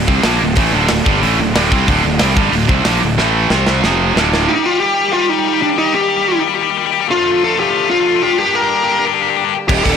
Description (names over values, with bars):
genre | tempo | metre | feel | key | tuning
heavy metal | 184 BPM | 4/4 | straight | D phrygian | A4 = 445 Hz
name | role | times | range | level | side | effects
rich chamber string section | sustained chords | 0.0-10.0 s | F2 to E5 | -26 LUFS | equal | none
heavy high-gain guitar | riff | 0.0-10.0 s | D2 to G4 | -17 LUFS | left 13 dB | distortion
heavy high-gain guitar | riff | 0.0-4.5, 9.7-10.0 s | D2 to C4 | -16 LUFS | right 12 dB | distortion
fuzz fingered electric bass | bass | 0.0-4.5, 9.7-10.0 s | D1 to C2 | -18 LUFS | equal | overdrive
tight metal drum kit | drums | 0.1-4.4, 9.7-9.9 s | crash cymbal, hi-hat, kick drum, snare drum | -17 LUFS | equal | soft clipping on snare
high-gain lead guitar | melody | 4.5-10.0 s | D4 to Bb4 | -15 LUFS | equal | distortion, tape echo
room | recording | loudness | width
small room ambience | blown-out, overdriven recording, overdrive | -12 LUFS | side -7 dB against mid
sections
0.0-4.5 A section; 4.5-10.0 B section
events
drum fill 3.2-4.5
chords
0.0 Dm; 3.2 A5; 3.5 C5; 3.8 F5; 4.2 Dm; 4.5 Eb; 7.1 Dm/F; 8.2 Gm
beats
0.25 | 0.58 0.90 1.23 1.55 | 1.88 2.21 2.53 2.86 | 3.18 3.51 3.83 4.16 | 4.48 4.81 5.13 5.46 | 5.79 6.11 6.43 6.76 | 7.09 7.41 7.74 8.06 | 8.39 8.71 9.04 9.37 | 9.69